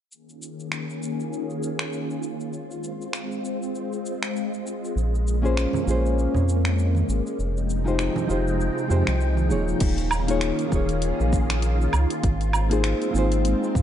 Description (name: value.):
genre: sunset chillout.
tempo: 99 BPM.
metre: 4/4.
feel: swing 58% on 16ths.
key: unclear.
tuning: A4 = 440 Hz.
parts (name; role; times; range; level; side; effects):
soft string machine; sustained chords; 0.4-13.8 s; C3 to G5; -28 LUFS; left 1 dB; phaser, ensemble chorus.
deep house drum kit; drums; 0.1-13.8 s; crash cymbal, finger snaps, hi-hat, shaker, woodblock; -31 LUFS; right 1 dB; none.
round analog bass; bass; 5.0-13.8 s; Eb1 to Ab2; -23 LUFS; equal; tube saturation.
nylon-string guitar; accompaniment; 5.4-13.8 s; Ab3 to Db5; -26 LUFS; moving between left 5 dB and right 1 dB; auto-pan, ping-pong delay.
congas; percussion; 5.7-9.5 s; none; -32 LUFS; right 3 dB; none.
electronic kick drum; drums; 9.8-13.8 s; none; -24 LUFS; equal; none.
room: light reverb, digital ambience.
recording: dark, warm production, nothing above 10.9 kHz.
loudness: -22 LUFS.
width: side -10 dB against mid.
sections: 0.1-9.8 A section; 9.8-13.8 B section.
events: filter sweep on string machine 0.1-9.8.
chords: 0.1 Eb9sus4; 2.5 Ab6; 5.0 Bbm9; 7.4 Fm9; 9.8 Eb9sus4; 12.2 Ab69.